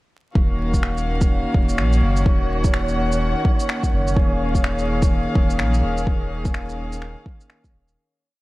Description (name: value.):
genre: future garage.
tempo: 126 BPM.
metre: 4/4.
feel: swing 61% on 16ths.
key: Eb minor.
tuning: A4 = 445 Hz.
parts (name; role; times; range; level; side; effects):
bright chamber string section; sustained chords; 0.4-7.9 s; Eb3 to Gb5; -25 LUFS; left 1 dB; sidechain pumping.
warm sub bass; bass; 0.4-8.0 s; Eb1 to Bb1; -22 LUFS; equal; sidechain pumping.
electronic kick drum; drums; 0.4-7.7 s; none; -19 LUFS; equal; vintage 12-bit sampler grit.
wind-like tuned noise texture; texture; 1.0-8.0 s; Db5; -30 LUFS; equal; built-in reverb.
electronic shaker and finger snaps; drums; 0.7-8.0 s; none; -28 LUFS; left 1 dB; vintage 12-bit sampler grit.
room: little or no reverb.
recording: vinyl crackle.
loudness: -18 LUFS.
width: side -19 dB against mid.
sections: 0.4-8.0 groove.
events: fade-out 5.4-8.0.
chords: 0.4 Ebm7; 4.2 Bbm7/Eb.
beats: | 0.36 0.83 1.31 1.78 | 2.26 2.74 3.21 3.69 | 4.17 4.64 5.12 5.59 | 6.07 6.55 7.02 7.50.